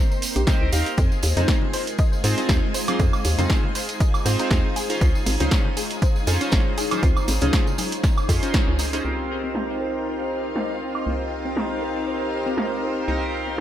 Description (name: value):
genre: deep house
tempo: 119 BPM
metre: 4/4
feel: swing 54% on 16ths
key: C phrygian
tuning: A4 = 444 Hz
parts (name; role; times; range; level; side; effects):
- airy breathy pad; sustained chords; 0.0-13.6 s; Ab3 to G5; -34 LUFS; left 1 dB; chorus, phaser, vintage 12-bit sampler grit, sidechain pumping
- warbly dusty pluck; arpeggios; 0.0-13.5 s; Bb3 to Eb5; -33 LUFS; left 4 dB; lush chorus, sidechain pumping, ping-pong delay
- granular cloud pad; texture; 0.0-13.6 s; Ab3 to Bb5; -35 LUFS; left 1 dB; built-in reverb, sidechain pumping
- string machine, violins; texture; 0.0-13.6 s; F4 to C6; -36 LUFS; equal; ensemble chorus, sidechain pumping
- tambourine; percussion; 0.1-9.0 s; none; -34 LUFS; right 3 dB; none
- punchy analog drum machine; drums; 0.2-13.6 s; hi-hat, snare drum, woodblock; -28 LUFS; right 2 dB; overdrive, low-pass filter on hats, low-pass filter on snare, low-pass filter on perc, low-pass filter on room
- hollow knocking FM bass; bass; 0.4-13.6 s; Ab1 to Ab2; -25 LUFS; equal; sidechain pumping
- chorused polysynth; stabs; 0.5-13.6 s; C4 to F5; -27 LUFS; right 1 dB; cassette tape, sidechain pumping, ping-pong delay
- electronic kick drum; drums; 0.5-8.7 s; none; -20 LUFS; equal; overdrive
- congas and bongos; percussion; 0.5-9.0 s; none; -33 LUFS; left 4 dB; sidechain pumping on perc
room: light reverb, digital ambience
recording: none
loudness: -20 LUFS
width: side -11 dB against mid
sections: 0.0-9.0 A section; 9.0-13.6 B section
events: band accent 8.5; filter sweep on analog synth pad 9.0-13.6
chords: 0.0 Cm7; 1.0 Fm7; 4.8 Dbmaj9; 9.0 Cm7